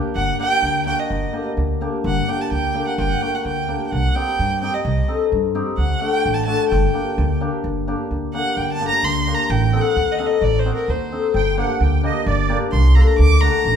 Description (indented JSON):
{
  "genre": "klezmer",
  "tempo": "129 BPM",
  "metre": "2/4",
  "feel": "straight",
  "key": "G harmonic minor",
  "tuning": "A4 = 438 Hz",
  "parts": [
    { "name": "cimbalom", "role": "accompaniment", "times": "0.0-13.5 s", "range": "A3 to A4", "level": "-22 LUFS", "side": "left 5 dB", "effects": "none" },
    { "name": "dark violin", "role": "melody", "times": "0.2-13.8 s", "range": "Bb4 to D6", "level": "-22 LUFS", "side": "right 2 dB", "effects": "none" },
    { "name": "upright bass", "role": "bass", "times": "0.2-13.8 s", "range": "G1 to G2", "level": "-19 LUFS", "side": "right 1 dB", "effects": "none" },
    { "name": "musette accordion", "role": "second line", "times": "11.4-12.6 s", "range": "D5 to G5", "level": "-24 LUFS", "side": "right 8 dB", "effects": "none" }
  ],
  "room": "wet large studio reverb, RT60 1.2 s",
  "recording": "band playing live in one room",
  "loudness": "-17 LUFS",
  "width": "side -8 dB against mid",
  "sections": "0.2-7.6 A section; 7.6-13.8 B section",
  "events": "speeding up 0.0-13.8; violin solo 7.6-13.8",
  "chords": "0.2 Gm; 3.9 Cm; 5.8 D; 6.7 Gm; 9.5 Adim; 11.3 Gm; 13.2 D"
}